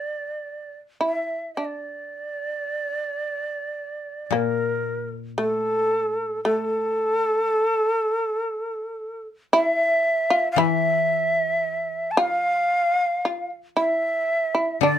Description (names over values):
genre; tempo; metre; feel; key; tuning
japanese traditional, Japanese chamber music; 57 BPM; 4/4; uneven beats, rubato; D hirajoshi; A4 = 440 Hz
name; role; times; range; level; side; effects
breathy shakuhachi; melody; 0.0-15.0 s; A4 to A5; -23 LUFS; equal; none
shamisen; second line; 0.0-15.0 s; A3 to F4; -24 LUFS; equal; none
koto; accompaniment; 4.3-15.0 s; Bb2 to E3; -26 LUFS; left 8 dB; none
room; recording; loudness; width
moderate studio reverb, RT60 0.5 s; minimal, uncompressed stereo recording; -21 LUFS; side -10 dB against mid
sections
0.0-2.1 A section; 2.1-15.0 B section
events
none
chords
none